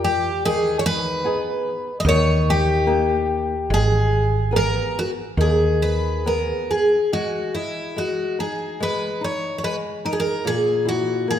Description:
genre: fado-style ballad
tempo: 72 BPM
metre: 4/4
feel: rubato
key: G# minor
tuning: A4 = 442 Hz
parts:
  - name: picked twelve-string acoustic guitar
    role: melody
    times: 0.0-11.4 s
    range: E4 to D#5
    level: -21 LUFS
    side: equal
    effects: none
  - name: flamenco guitar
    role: accompaniment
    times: 0.0-11.4 s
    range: A#2 to D#5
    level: -26 LUFS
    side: left 3 dB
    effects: none
  - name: woody fretless electric bass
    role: bass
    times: 0.0-6.5 s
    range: G#1 to E#2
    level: -22 LUFS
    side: right 1 dB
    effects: none
room: wet concert hall reverb, RT60 2.0 s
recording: minimal, uncompressed stereo recording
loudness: -19 LUFS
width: side -10 dB against mid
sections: 0.0-7.1 A section; 7.1-11.4 B section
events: none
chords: 0.4 G#m/D#; 2.1 D#; 3.7 G#madd9; 7.1 G#5; 10.5 A#7(b5, no3)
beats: | 0.44 1.25 2.05 2.87 | 3.70 4.53 5.38 6.25 | 7.12 7.97 8.81 9.64 | 10.45 11.28

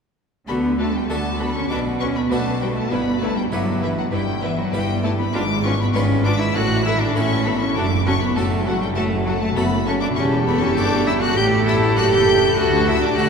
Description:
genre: classical, baroque-style concerto movement with solo episodes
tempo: 99 BPM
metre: 4/4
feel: straight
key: D major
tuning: A4 = 440 Hz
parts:
  - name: rich cello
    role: melody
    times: 0.5-13.3 s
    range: E3 to G4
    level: -22 LUFS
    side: left 1 dB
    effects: none
  - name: rich chamber violin section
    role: melody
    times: 0.5-13.3 s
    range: E5 to G6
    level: -27 LUFS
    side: left 5 dB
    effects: none
  - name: rich studio violin section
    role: second line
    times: 0.5-13.3 s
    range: A4 to B4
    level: -27 LUFS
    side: left 3 dB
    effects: none
  - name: harpsichord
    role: accompaniment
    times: 0.5-13.3 s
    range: D2 to B4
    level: -28 LUFS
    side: right 1 dB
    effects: none
  - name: rich chamber viola section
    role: accompaniment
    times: 0.5-13.3 s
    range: E4 to G4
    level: -27 LUFS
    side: right 2 dB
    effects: none
  - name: rich studio cello section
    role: bass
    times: 0.5-13.3 s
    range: D2 to D3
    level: -26 LUFS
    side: right 2 dB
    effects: none
  - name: warm chamber double bass section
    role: bass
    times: 0.5-13.3 s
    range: E1 to D2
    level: -24 LUFS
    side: right 2 dB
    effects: none
room: wet cathedral reverb, RT60 7.6 s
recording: minimal, uncompressed stereo recording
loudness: -17 LUFS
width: side -6 dB against mid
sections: 0.5-13.3 A section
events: none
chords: 0.5 D; 1.7 Bm; 2.9 Em/G; 5.3 G#dim7; 6.6 A5; 7.8 F#madd11; 10.2 A5/E; 12.6 D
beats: | 0.49 1.10 1.71 2.31 | 2.92 3.52 4.12 4.73 | 5.34 5.95 6.55 7.16 | 7.76 8.36 8.96 9.57 | 10.17 10.77 11.37 11.97 | 12.57 13.17

